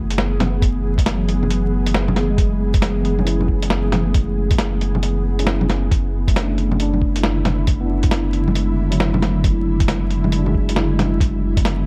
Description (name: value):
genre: future garage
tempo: 136 BPM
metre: 4/4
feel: swing 64% on 16ths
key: F# minor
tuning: A4 = 440 Hz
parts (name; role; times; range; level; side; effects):
- tine electric piano; accompaniment; 0.0-11.9 s; F#3 to G#4; -27 LUFS; equal; vintage 12-bit sampler grit, sidechain pumping, digital delay
- ethereal airy pad; sustained chords; 0.0-11.9 s; D3 to G#4; -27 LUFS; equal; ensemble chorus, built-in reverb, sidechain pumping
- soft dub sub bass; bass; 0.0-11.9 s; F#1; -23 LUFS; equal; sidechain pumping
- lo-fi sampler-style drum kit; drums; 0.1-11.8 s; bongos, hi-hat, snare drum; -25 LUFS; equal; none
- electronic kick drum; drums; 0.6-11.6 s; none; -19 LUFS; equal; none
room: light reverb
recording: dark, warm production, vinyl crackle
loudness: -19 LUFS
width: mono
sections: 0.0-11.9 A section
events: none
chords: 0.0 F#m11; 5.9 Dsus2/F#